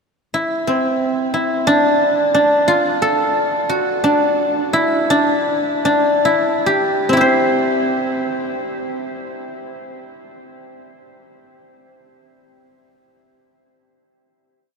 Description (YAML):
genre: contemporary instrumental, chamber music in an uneven meter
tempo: 135-179 BPM (eighths)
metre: 5/8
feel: straight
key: C major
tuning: A4 = 440 Hz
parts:
  - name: guzheng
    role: solo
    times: 0.3-11.2 s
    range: C4 to C5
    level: -15 LUFS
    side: equal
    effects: none
room: wet huge ambient reverb, RT60 7.6 s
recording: in a vast, echoing space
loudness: -15 LUFS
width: side -5 dB against mid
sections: 0.0-7.1 A section; 7.1-11.5 final chord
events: slowing down 3.4-7.1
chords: 0.0 C; 1.7 Dm; 3.4 D; 5.1 Dsus24; 7.1 C